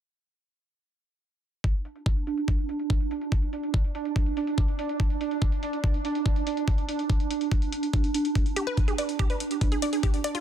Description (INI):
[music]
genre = psychedelic trance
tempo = 143 BPM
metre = 4/4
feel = straight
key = unclear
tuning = A4 = 440 Hz
[part]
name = pulsing gated texture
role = sustained chords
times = 2.2-10.4 s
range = D4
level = -29 LUFS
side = right 4 dB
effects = chorus, built-in reverb, sidechain pumping
[part]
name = electronic hi-hat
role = drums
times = 1.6-10.4 s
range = none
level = -38 LUFS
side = left 2 dB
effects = low-pass filter on hats
[part]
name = electronic kick drum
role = drums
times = 1.6-10.1 s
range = none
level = -24 LUFS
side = equal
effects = overdrive
[part]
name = woody wave-folded pluck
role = riff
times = 8.6-10.4 s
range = F4 to D5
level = -31 LUFS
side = moving between left 5 dB and right 1 dB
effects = chorus, auto-pan, sidechain pumping, tape echo
[sound]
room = light reverb, digital ambience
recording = dense, heavily limited modern master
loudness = -24 LUFS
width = side -10 dB against mid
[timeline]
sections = 1.6-10.4 A section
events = filter sweep on drum 1.6-10.4; filter sweep on synth texture 1.6-10.4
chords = none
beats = | 1.64 2.06 2.48 2.90 | 3.32 3.74 4.16 4.58 | 5.00 5.42 5.84 6.26 | 6.68 7.10 7.52 7.93 | 8.36 8.77 9.19 9.61 | 10.03